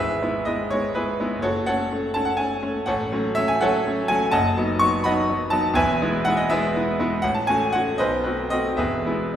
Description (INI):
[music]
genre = classical, romantic character piece for solo piano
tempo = 82 BPM (dotted quarters)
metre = 6/8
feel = rubato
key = E major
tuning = A4 = 440 Hz
[part]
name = bright concert grand piano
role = solo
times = 0.0-9.4 s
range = E1 to C#6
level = -20 LUFS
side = equal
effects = none
[sound]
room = wet recital hall reverb, RT60 1.2 s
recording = heard from further back in the room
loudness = -20 LUFS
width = side -10 dB against mid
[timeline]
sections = 0.0-9.4 A section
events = none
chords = 0.0 E/G#; 1.4 F#m; 2.9 F#m/A; 4.3 B7/F#; 5.8 E; 7.2 F#m/A; 8.0 B5; 8.8 E